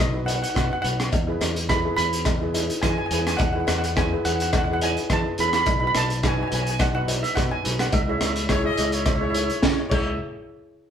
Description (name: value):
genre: calypso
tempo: 106 BPM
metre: 4/4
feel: swing 54% on 16ths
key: C# minor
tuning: A4 = 443 Hz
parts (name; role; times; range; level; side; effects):
- warm trumpet; second line; 0.0-0.1, 8.5-10.2 s; C#5 to E5; -30 LUFS; left 5 dB; none
- fingered electric bass; bass; 0.0-10.2 s; B1 to E3; -28 LUFS; equal; none
- steel pan; accompaniment; 0.1-10.2 s; D#4 to C#5; -29 LUFS; equal; none
- steel pan; melody; 0.3-10.2 s; C#5 to B5; -26 LUFS; right 2 dB; none
- crunchy breakbeat drum kit; drums; 0.3-10.1 s; crash cymbal, hi-hat, kick drum, rim click, snare drum; -24 LUFS; equal; none
- cowbell; percussion; 0.3-10.2 s; none; -33 LUFS; left 2 dB; none
room: moderate studio reverb, RT60 1.0 s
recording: band playing live in one room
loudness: -20 LUFS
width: side -8 dB against mid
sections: 0.0-10.2 A section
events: drum fill 9.6-10.2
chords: 0.0 B; 1.1 Eadd9; 5.7 B; 7.9 C#m; 10.2 N.C.